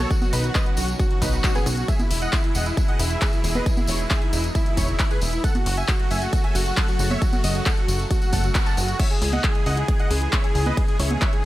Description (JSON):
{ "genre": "uplifting trance", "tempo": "135 BPM", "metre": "4/4", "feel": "straight", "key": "F# dorian", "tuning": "A4 = 440 Hz", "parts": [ { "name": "dense compressed supersaw", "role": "melody", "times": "0.0-11.4 s", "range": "B3 to A5", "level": "-27 LUFS", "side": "right 1 dB", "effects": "sidechain pumping, tape echo" }, { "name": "supersaw pad", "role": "sustained chords", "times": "0.0-11.5 s", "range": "B2 to A4", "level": "-32 LUFS", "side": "equal", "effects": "phaser, sidechain pumping" }, { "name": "plucky analog bass", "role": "bass", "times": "0.0-11.2 s", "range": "E1 to C#2", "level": "-24 LUFS", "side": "equal", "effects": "sidechain pumping" }, { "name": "punchy analog drum machine", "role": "drums", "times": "0.0-11.4 s", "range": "congas, crash cymbal, handclaps, hi-hat, ride cymbal", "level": "-28 LUFS", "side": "equal", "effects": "overdrive" }, { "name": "electronic kick drum", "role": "drums", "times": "0.1-11.3 s", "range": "none", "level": "-21 LUFS", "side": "equal", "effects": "none" }, { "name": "tambourine", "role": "percussion", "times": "0.1-9.0 s", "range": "none", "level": "-34 LUFS", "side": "right 1 dB", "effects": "none" } ], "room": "digital ambience", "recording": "none", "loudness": "-19 LUFS", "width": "side -16 dB against mid", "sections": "0.0-9.0 A section; 9.0-11.5 A section", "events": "drop 0.0-9.0, 9.0-11.5; band accent 8.6", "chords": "0.0 B; 1.9 E; 5.4 F#m; 9.0 C#m", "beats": "| 0.11 0.55 0.99 1.44 | 1.88 2.33 2.77 3.22 | 3.66 4.11 4.55 5.00 | 5.44 5.88 6.33 6.77 | 7.22 7.66 8.11 8.55 | 8.99 9.44 9.88 10.33 | 10.77 11.22" }